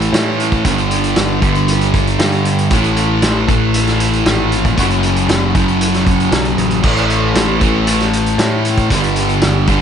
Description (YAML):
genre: rock, shoegaze and dream pop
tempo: 116 BPM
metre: 4/4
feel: straight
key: A major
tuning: A4 = 440 Hz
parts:
  - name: fuzz guitar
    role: riff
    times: 0.0-9.8 s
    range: F#2 to A3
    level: -14 LUFS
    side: equal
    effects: distortion, wide subtle chorus
  - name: modern bright picked electric bass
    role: bass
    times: 0.0-9.8 s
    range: F#1 to A2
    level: -19 LUFS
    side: equal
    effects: none
  - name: loose indie drum kit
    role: drums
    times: 0.0-9.8 s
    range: crash cymbal, hi-hat, kick drum, snare drum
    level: -18 LUFS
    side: equal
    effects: none
room: small room ambience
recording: nothing above 10.3 kHz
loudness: -12 LUFS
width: side -8 dB against mid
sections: 0.0-9.8 A section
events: none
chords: 0.0 A5; 0.6 G5; 2.7 A5; 4.8 F#m; 6.8 A5; 8.9 G5